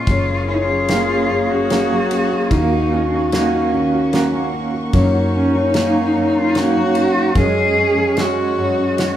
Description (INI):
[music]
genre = acoustic folk-pop ballad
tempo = 74 BPM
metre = 3/4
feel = straight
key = F# major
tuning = A4 = 440 Hz
[part]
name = warm cello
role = melody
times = 0.0-9.2 s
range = C#4 to G#4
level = -20 LUFS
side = right 1 dB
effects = none
[part]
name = fingerpicked steel-string acoustic guitar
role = accompaniment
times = 0.0-9.2 s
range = F#2 to F#4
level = -22 LUFS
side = left 3 dB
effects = none
[part]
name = warm studio string section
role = sustained chords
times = 0.0-9.2 s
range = G#4 to C#6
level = -32 LUFS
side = equal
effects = none
[part]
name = electric guitar through a small old amp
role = arpeggios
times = 0.0-9.2 s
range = G#3 to F#4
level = -22 LUFS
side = right 4 dB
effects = tremolo
[part]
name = breathy clarinet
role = second line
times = 0.1-9.2 s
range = C#4 to G#4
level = -22 LUFS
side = left 2 dB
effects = none
[part]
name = woody fretless electric bass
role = bass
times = 0.1-9.2 s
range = F#1 to F#2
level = -24 LUFS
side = equal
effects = none
[part]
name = loose indie drum kit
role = drums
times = 0.1-9.2 s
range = kick drum, ride cymbal, snare drum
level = -22 LUFS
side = equal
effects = none
[sound]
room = wet large studio reverb, RT60 0.8 s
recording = band playing live in one room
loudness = -14 LUFS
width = side -11 dB against mid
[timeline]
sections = 0.0-9.2 A section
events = none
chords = 0.1 F#maj7; 2.5 D#m7; 4.9 F#maj7; 7.4 F#sus2